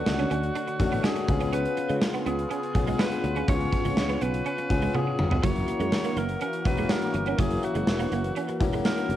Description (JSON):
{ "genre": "1980s-style pop", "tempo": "123 BPM", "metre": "4/4", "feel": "straight", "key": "unclear", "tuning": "A4 = 445 Hz", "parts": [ { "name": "raspy alto saxophone", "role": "melody", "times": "0.0-9.2 s", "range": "F#4 to C#5", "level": "-33 LUFS", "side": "right 1 dB", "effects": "cassette tape" }, { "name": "warm concert grand piano", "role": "accompaniment", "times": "0.0-9.2 s", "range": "A3 to G#4", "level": "-31 LUFS", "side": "left 6 dB", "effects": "cassette tape" }, { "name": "sweeping resonant pad", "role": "sustained chords", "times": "0.0-9.2 s", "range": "C#3 to C#5", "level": "-34 LUFS", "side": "equal", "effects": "chorus, cassette tape" }, { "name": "electric guitar at the edge of break-up", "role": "riff", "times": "0.0-9.0 s", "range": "F#3 to D4", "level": "-33 LUFS", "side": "right 7 dB", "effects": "ensemble chorus, cassette tape" }, { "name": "sustaining fretless electric bass", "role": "bass", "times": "0.0-9.2 s", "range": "E1 to C#3", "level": "-30 LUFS", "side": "equal", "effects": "none" }, { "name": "gated 80s drum kit", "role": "drums", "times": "0.1-9.2 s", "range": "hi-hat, kick drum, snare drum, tambourine, toms", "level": "-27 LUFS", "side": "equal", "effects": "cassette tape" } ], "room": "light reverb, small room ambience", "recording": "home recording on cassette", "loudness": "-24 LUFS", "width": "side -12 dB against mid", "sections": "0.0-9.2 A section", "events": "drum fill 4.9-5.4", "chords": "0.0 Dmaj7; 1.3 C#7; 5.4 F#7" }